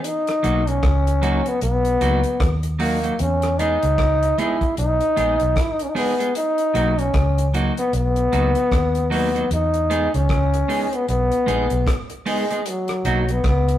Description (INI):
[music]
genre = roots reggae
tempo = 76 BPM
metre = 4/4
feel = swing 61% on 16ths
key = B major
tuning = A4 = 439 Hz
[part]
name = clear trombone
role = melody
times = 0.0-13.8 s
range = F#3 to E4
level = -21 LUFS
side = left 1 dB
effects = none
[part]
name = damped 70s drum kit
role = drums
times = 0.0-13.8 s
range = hi-hat, kick drum, rim click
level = -25 LUFS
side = equal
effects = none
[part]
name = clean electric guitar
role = accompaniment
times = 0.4-13.2 s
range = F#3 to G#4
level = -25 LUFS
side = right 2 dB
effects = none
[part]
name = vintage muted fingered electric bass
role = bass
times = 0.4-13.8 s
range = A#1 to E2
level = -22 LUFS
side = equal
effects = none
[sound]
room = moderate stone room reverb, RT60 1.0 s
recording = rough rehearsal-room recording, tube saturation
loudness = -17 LUFS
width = side -12 dB against mid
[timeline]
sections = 0.0-13.8 A section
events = none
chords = 0.0 Bmaj7; 3.2 Emaj7; 6.3 Bmaj7; 9.5 Emaj7; 12.7 Bmaj7